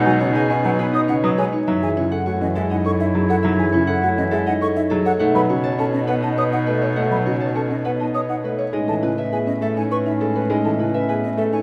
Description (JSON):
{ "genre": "classical, minimalist pattern music", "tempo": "102 BPM", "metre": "3/4", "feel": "straight", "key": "F# dorian", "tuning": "A4 = 440 Hz", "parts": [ { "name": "Celtic harp", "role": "melody", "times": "0.0-11.6 s", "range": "A4 to A5", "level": "-29 LUFS", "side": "equal", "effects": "none" }, { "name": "mellow clarinet", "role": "second line", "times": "0.0-11.6 s", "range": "C#4 to E4", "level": "-29 LUFS", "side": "equal", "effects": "none" }, { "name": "warm concert grand piano", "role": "accompaniment", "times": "0.0-11.6 s", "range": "C#3 to C#4", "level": "-27 LUFS", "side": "equal", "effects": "none" }, { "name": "buzzing marimba with soft mallets", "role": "arpeggios", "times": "0.0-11.6 s", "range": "C#4 to C#5", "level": "-26 LUFS", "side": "equal", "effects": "none" }, { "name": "rich cello", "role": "bass", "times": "0.0-11.6 s", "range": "F#2 to B2", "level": "-26 LUFS", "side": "equal", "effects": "none" }, { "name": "concert flute", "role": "arpeggios", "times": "0.1-11.6 s", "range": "D#5 to D#6", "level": "-30 LUFS", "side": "equal", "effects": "none" } ], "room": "moderate scoring stage reverb, RT60 1.9 s", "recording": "none", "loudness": "-20 LUFS", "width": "mono", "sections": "0.0-1.7 A section; 1.7-11.6 B section", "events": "none", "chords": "0.0 Badd9; 1.7 F#m9; 5.2 B7; 8.7 Amaj9" }